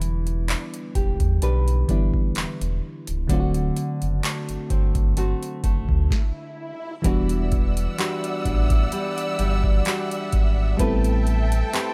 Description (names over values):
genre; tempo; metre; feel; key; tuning
contemporary R&B; 64 BPM; 4/4; swing 54% on 16ths; E minor; A4 = 440 Hz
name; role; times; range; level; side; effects
FM electric piano; accompaniment; 0.0-11.9 s; D3 to A4; -31 LUFS; equal; none
nylon-string guitar; arpeggios; 0.0-11.9 s; D3 to B4; -33 LUFS; equal; digital delay
sub bass with octave; bass; 0.0-11.6 s; C#1 to E2; -25 LUFS; equal; none
booming analog drum machine; drums; 0.0-11.9 s; handclaps, hi-hat, kick drum, snare drum; -26 LUFS; equal; overdrive
swell; sound effects; 6.2-7.0 s; none; -42 LUFS; equal; none
rich symphonic string section; sustained chords; 7.0-11.9 s; A4 to E6; -32 LUFS; equal; none
room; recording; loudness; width
little or no reverb; none; -23 LUFS; mono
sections
0.0-7.0 A section; 7.0-11.9 B section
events
swell 6.2-7.0; stop 6.1-7.0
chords
0.0 Em7; 3.3 D7; 7.0 Em9; 10.8 Am9